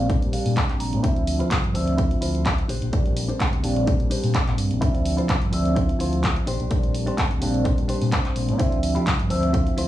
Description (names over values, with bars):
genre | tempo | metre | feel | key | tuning
filtered disco house | 127 BPM | 4/4 | swing 54% on 16ths | D minor | A4 = 442 Hz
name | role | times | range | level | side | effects
bell-like tine electric piano | accompaniment | 0.0-9.9 s | F3 to E5 | -25 LUFS | right 1 dB | phaser, sidechain pumping, low-pass filter, cassette tape
direct-recorded clean electric guitar | riff | 0.0-9.9 s | D4 to Bb5 | -32 LUFS | left 1 dB | sidechain pumping, low-pass filter, cassette tape
overdriven fingered electric bass | bass | 0.0-9.9 s | G1 to Bb2 | -26 LUFS | left 1 dB | sidechain pumping, low-pass filter
electronic kick drum | drums | 0.1-9.6 s | none | -24 LUFS | equal | cassette tape
punchy analog drum machine | drums | 0.1-9.9 s | handclaps, hi-hat | -29 LUFS | equal | sidechain pumping on hats, cassette tape, sidechain pumping on perc, sidechain pumping on cymbals
room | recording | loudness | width
moderate booth ambience, RT60 0.2 s | home recording on cassette, studio reverb | -20 LUFS | side -13 dB against mid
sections
0.0-9.9 A section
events
clean electric guitar fill 0.0-1.0, 7.9-8.6; filter sweep 0.0-9.9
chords
0.0 Bb69; 1.0 Dm9; 2.7 Bb69; 4.8 Dm9; 6.5 Bb69; 8.6 Dm9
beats
0.10 0.57 | 1.04 1.51 1.99 2.46 | 2.93 3.40 3.88 4.35 | 4.82 5.29 5.76 6.24 | 6.71 7.18 7.66 8.13 | 8.60 9.07 9.54